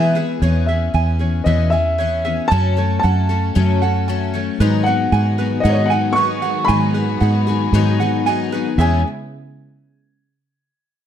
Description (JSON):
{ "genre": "folk", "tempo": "115 BPM", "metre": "4/4", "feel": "straight", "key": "E major", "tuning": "A4 = 440 Hz", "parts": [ { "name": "warm upright piano", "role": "melody", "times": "0.0-9.0 s", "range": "C#5 to C#6", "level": "-21 LUFS", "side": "left 1 dB", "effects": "none" }, { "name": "picked twelve-string acoustic guitar", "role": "accompaniment", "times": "0.0-9.0 s", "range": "E2 to A4", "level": "-22 LUFS", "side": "left 8 dB", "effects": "none" }, { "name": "warm symphonic string section", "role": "sustained chords", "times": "0.0-0.4, 4.6-9.0 s", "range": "C#3 to G#4", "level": "-28 LUFS", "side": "right 1 dB", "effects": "none" }, { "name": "ukulele", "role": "arpeggios", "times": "0.0-9.0 s", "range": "G#4 to A5", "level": "-25 LUFS", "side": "right 12 dB", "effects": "slapback echo" }, { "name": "fingered electric bass", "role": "bass", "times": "0.0-9.0 s", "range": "E2 to E3", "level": "-17 LUFS", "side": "right 1 dB", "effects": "none" } ], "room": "light reverb, studio ambience", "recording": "dark, warm production", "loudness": "-15 LUFS", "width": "side -9 dB against mid", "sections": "0.4-8.8 A section; 8.8-10.9 B section", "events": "none", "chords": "0.4 E6; 2.5 F#m; 4.6 G#m7; 8.8 E6" }